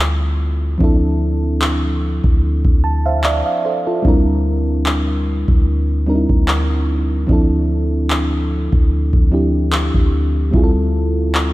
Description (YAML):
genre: contemporary R&B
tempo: 74 BPM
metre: 4/4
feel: swing 54% on 16ths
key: D minor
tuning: A4 = 442 Hz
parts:
  - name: mellow FM electric piano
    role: accompaniment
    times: 0.0-11.5 s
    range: F3 to A5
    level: -19 LUFS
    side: right 1 dB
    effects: chorus
  - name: clean 808-style bass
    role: bass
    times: 0.0-11.5 s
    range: D2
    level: -18 LUFS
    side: equal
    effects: none
  - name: booming analog drum machine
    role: drums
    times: 0.8-11.5 s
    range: handclaps, kick drum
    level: -17 LUFS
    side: equal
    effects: none
room: light reverb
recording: none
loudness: -14 LUFS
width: side -18 dB against mid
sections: 0.0-11.5 A section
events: FM electric piano fill 2.4-4.0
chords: 0.0 Fmaj9/D; 0.8 Dm9; 4.0 C9/D; 7.3 Dm9